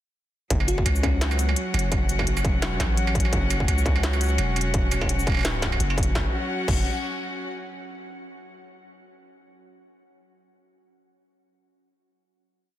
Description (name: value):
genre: half-time drum and bass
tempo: 170 BPM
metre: 4/4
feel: swing 56% on 16ths, half-time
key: unclear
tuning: A4 = 440 Hz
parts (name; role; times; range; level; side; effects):
- rich chamber string section; sustained chords; 0.5-7.5 s; F#3 to F#5; -30 LUFS; left 1 dB; sidechain pumping
- long sustained 808-style bass; bass; 0.5-6.8 s; E1 to C#2; -25 LUFS; equal; none
- electronic kick drum; drums; 0.5-6.8 s; none; -25 LUFS; equal; distortion
- industrial drum kit; drums; 0.5-6.8 s; crash cymbal, hi-hat, shaker, snare drum, struck metal; -29 LUFS; right 1 dB; none
- bell-like FM electric piano; melody; 0.7-1.5 s; C#4 to F#4; -34 LUFS; left 2 dB; chorus, dub echo
room: little or no reverb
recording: dense, heavily limited modern master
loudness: -21 LUFS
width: side -13 dB against mid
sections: 0.5-6.2 drop; 6.2-7.6 final chord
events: drop 0.5-6.2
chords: 0.5 F#5